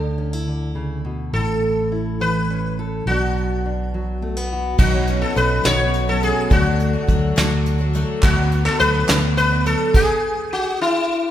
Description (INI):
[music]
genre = indie folk with a building arrangement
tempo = 70 BPM (dotted quarters)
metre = 6/8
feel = straight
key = unclear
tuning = A4 = 440 Hz
[part]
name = sitar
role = melody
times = 0.0-11.3 s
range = D4 to C#5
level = -21 LUFS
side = left 1 dB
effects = none
[part]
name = fingerpicked steel-string acoustic guitar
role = accompaniment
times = 0.0-8.2 s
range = A2 to A4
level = -26 LUFS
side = left 1 dB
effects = none
[part]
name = fingered electric bass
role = bass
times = 0.0-9.7 s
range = A1 to D2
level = -22 LUFS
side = right 1 dB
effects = none
[part]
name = picked twelve-string acoustic guitar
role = accompaniment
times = 4.8-10.0 s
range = B2 to F#4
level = -26 LUFS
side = left 2 dB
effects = none
[part]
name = soft brush drum kit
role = drums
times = 4.8-10.1 s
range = crash cymbal, hi-hat, kick drum, snare drum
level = -19 LUFS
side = equal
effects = none
[part]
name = group handclap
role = percussion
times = 8.2-9.2 s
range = none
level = -28 LUFS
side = right 1 dB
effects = none
[sound]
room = moderate scoring stage reverb, RT60 1.9 s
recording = recorded in a church or concert hall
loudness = -17 LUFS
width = side -11 dB against mid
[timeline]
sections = 0.0-4.8 A section; 4.8-11.3 B section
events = none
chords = 0.0 Dsus2; 1.3 Aadd9; 3.1 Bm; 4.8 Badd9; 6.5 D; 8.2 Bm/D; 9.9 N.C.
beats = 0.48 | 1.34 2.20 | 3.06 3.93 | 4.79 5.65 | 6.51 7.37 | 8.23 9.09 | 9.95 10.80